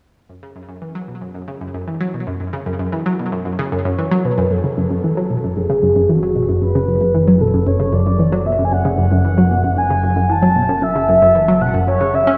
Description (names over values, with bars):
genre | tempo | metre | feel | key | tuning
ambient, sequencer-driven space music | 114 BPM | 4/4 | straight | F# minor | A4 = 436 Hz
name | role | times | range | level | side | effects
analog pluck | riff | 0.3-12.3 s | F#2 to C#4 | -20 LUFS | equal | chorus, tape echo
mellow horn-like synth lead | melody | 3.7-12.4 s | F#4 to A5 | -20 LUFS | equal | chorus, tape echo
fat analog bass | bass | 4.5-12.4 s | F#1 | -24 LUFS | equal | none
room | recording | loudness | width
wet huge ambient reverb, RT60 7.2 s | studio reverb | -16 LUFS | mono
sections
0.3-4.5 A section; 4.5-12.4 B section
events
fade-in on synth arpeggio sound 0.3-4.5; filter sweep on synth arpeggio sound 4.5-12.4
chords
0.3 F#5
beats
| 0.30 0.82 1.35 1.88 | 2.40 2.93 3.46 3.98 | 4.51 5.03 5.56 6.09 | 6.61 7.14 7.67 8.19 | 8.72 9.24 9.77 10.30 | 10.82 11.35 11.88